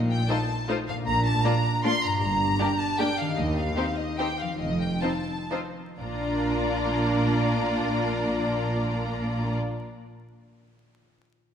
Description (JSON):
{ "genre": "classical", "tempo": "119-169 BPM", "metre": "3/4", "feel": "rubato", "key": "Bb major", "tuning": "A4 = 440 Hz", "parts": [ { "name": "concert harp", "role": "arpeggios", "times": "0.0-10.1 s", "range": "G2 to D5", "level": "-33 LUFS", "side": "left 2 dB", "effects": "none" }, { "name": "warm studio double bass section", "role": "bass", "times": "0.0-9.5 s", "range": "F1 to Eb2", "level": "-32 LUFS", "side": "right 2 dB", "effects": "none" }, { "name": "warm symphonic cello section", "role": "bass", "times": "0.0-9.5 s", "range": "Eb2 to Bb2", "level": "-31 LUFS", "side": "right 1 dB", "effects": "none" }, { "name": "warm symphonic violin section", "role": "melody", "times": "0.1-9.5 s", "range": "Eb5 to C6", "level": "-30 LUFS", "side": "left 1 dB", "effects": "none" }, { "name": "warm symphonic violin section", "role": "second line", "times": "0.3-9.5 s", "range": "F4 to D5", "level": "-32 LUFS", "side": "left 2 dB", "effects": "none" }, { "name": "warm symphonic viola section", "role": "accompaniment", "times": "0.3-9.5 s", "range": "A3 to Eb4", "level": "-30 LUFS", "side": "right 1 dB", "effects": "none" } ], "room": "wet scoring stage reverb, RT60 1.9 s", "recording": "minimal, uncompressed stereo recording, vinyl crackle", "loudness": "-23 LUFS", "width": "side -8 dB against mid", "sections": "0.0-6.0 A section; 6.0-8.8 B section", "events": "slowing down 2.8-6.0", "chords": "0.0 F7/Bb; 1.1 Bb; 2.2 Gm; 3.4 Cm/Eb; 4.6 F7; 6.0 Bb" }